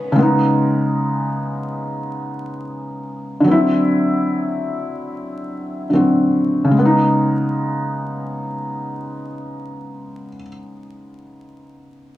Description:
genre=hip hop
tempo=free time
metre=none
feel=none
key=B major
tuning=A4 = 440 Hz
part: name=felt-muted upright piano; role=accompaniment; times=0.0-12.2 s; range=C#3 to F#4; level=-17 LUFS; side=equal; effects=cassette tape
room=wet studio reverb, RT60 0.6 s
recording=vinyl crackle, small room ambience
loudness=-16 LUFS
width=side -14 dB against mid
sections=0.2-6.7 A section; 6.7-10.0 B section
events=none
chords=0.2 B69; 3.5 D9; 6.7 B69

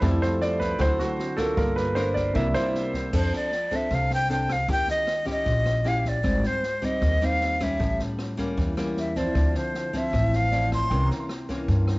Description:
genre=bossa nova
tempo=154 BPM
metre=4/4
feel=straight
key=F major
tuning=A4 = 441 Hz
part: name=clear grand piano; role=accompaniment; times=0.0-3.2, 9.3-12.0 s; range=F#3 to C6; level=-27 LUFS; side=right 1 dB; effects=cassette tape
part: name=nylon-string guitar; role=accompaniment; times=0.0-12.0 s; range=G2 to Bb4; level=-29 LUFS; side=equal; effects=cassette tape
part: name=upright bass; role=bass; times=0.0-12.0 s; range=G1 to G2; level=-26 LUFS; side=equal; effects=transformer saturation
part: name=open jazz drum kit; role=drums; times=0.0-12.0 s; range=crash cymbal, kick drum, rim click, snare drum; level=-32 LUFS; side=equal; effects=cassette tape
part: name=breathy jazz flute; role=melody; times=3.2-11.1 s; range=C5 to C6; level=-26 LUFS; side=equal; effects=cassette tape
room=little or no reverb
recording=home recording on cassette, nothing above 7.8 kHz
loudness=-22 LUFS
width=side -23 dB against mid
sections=0.0-3.1 A section; 3.1-12.0 B section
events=grand piano solo 0.0-3.1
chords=0.0 Fmaj7; 0.8 D7; 1.6 Gm7; 2.4 C7; 3.1 F6; 4.7 Eb7b9; 6.2 Abmaj7; 7.8 A7b9; 9.4 Dm9; 10.9 C7b9

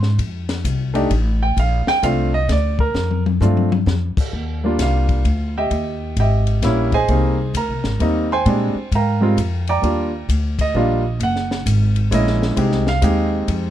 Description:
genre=jazz, small-group swing and bop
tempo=131 BPM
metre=3/4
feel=swing 65% on 8ths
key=Bb major, Eb major from 4.3 s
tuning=A4 = 439 Hz
part: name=warm baby grand piano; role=accompaniment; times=0.0-13.7 s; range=G3 to D6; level=-20 LUFS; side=right 2 dB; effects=none
part: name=upright bass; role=bass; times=0.0-13.7 s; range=Gb1 to Bb2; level=-19 LUFS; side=equal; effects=none
part: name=compact cocktail drum kit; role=drums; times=0.0-13.6 s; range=crash cymbal, hi-hat, kick drum, ride cymbal, snare drum, toms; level=-25 LUFS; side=left 4 dB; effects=none
room=little or no reverb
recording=close, detailed microphones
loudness=-16 LUFS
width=side -11 dB against mid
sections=0.0-4.3 A section; 4.3-13.7 A section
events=drum fill 3.0-3.9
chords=0.2 Fadd9; 1.6 Bbmaj9; 4.3 Ebmaj7; 5.7 Eb7b9; 7.1 Abmaj7; 8.5 Bb13; 9.8 Ebmaj7; 11.2 Gb9; 12.6 Fm7

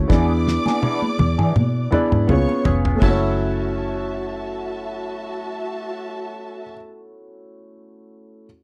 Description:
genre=lush 1970s-style soul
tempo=82 BPM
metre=4/4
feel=swing 54% on 16ths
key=F# minor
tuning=A4 = 439 Hz
part: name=warm concert grand piano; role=accompaniment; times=0.0-8.5 s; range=G#3 to D5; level=-26 LUFS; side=equal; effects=none
part: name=vintage muted fingered electric bass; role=bass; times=0.0-6.7 s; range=E#1 to E3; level=-24 LUFS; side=equal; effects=none
part: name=rich symphonic string section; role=second line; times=0.1-6.7 s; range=F#4 to D6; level=-32 LUFS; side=equal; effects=none
part: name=electric guitar through a small old amp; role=riff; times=0.1-6.8 s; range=E3 to B4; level=-32 LUFS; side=equal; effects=wah
part: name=damped 70s drum kit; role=drums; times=0.1-3.2 s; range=crash cymbal, kick drum, snare drum, toms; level=-23 LUFS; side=equal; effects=none
part: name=congas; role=percussion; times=0.1-3.4 s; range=none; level=-29 LUFS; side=equal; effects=none
room=little or no reverb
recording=dry, close 1970s-style studio recording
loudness=-21 LUFS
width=mono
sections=0.0-3.0 A section; 3.0-5.9 B section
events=drum fill 0.1-3.0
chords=0.1 E7; 2.3 C#7; 3.0 F#m7

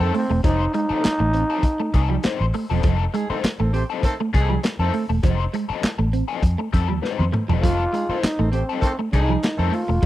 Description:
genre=funk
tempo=100 BPM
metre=4/4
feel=straight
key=F mixolydian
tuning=A4 = 440 Hz
part: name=growling trombone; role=melody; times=0.0-2.5, 7.6-10.1 s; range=C4 to F4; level=-24 LUFS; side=equal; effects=none
part: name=dark horn section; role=second line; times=0.0-9.8 s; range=Eb3 to C5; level=-28 LUFS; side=right 2 dB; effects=none
part: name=overdriven electric guitar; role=accompaniment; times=0.0-10.1 s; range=G3 to C5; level=-28 LUFS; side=left 9 dB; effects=wah, spring reverb
part: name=vintage muted fingered electric bass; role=bass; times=0.0-10.1 s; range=E1 to F2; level=-21 LUFS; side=equal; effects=none
part: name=electric guitar at the edge of break-up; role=riff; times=0.1-10.1 s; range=F3 to C4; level=-26 LUFS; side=right 5 dB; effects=lush chorus
part: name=crunchy breakbeat drum kit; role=drums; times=0.1-10.1 s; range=handclaps, hi-hat, kick drum, snare drum, toms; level=-21 LUFS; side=equal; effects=none
room=little or no reverb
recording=dry, close 1970s-style studio recording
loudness=-19 LUFS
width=side -14 dB against mid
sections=0.0-10.1 A section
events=drum fill 7.0-7.6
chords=0.0 F9

